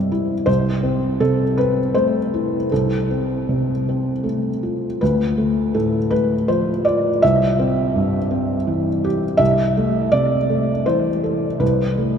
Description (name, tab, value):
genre	neoclassical minimalist piano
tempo	81 BPM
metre	3/4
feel	uneven beats, rubato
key	A minor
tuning	A4 = 438 Hz
part	felt-muted upright piano	solo	0.0-12.2 s	C2 to E5	-17 LUFS	equal	slapback echo
room	wet cathedral reverb, RT60 6.9 s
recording	in a vast, echoing space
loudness	-17 LUFS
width	side -7 dB against mid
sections	0.0-5.0 A section; 5.0-12.2 A section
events	none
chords	0.5 Am/C; 2.7 F/C; 5.0 Dm; 7.2 C; 9.4 Am/C; 11.6 F/C (rootless)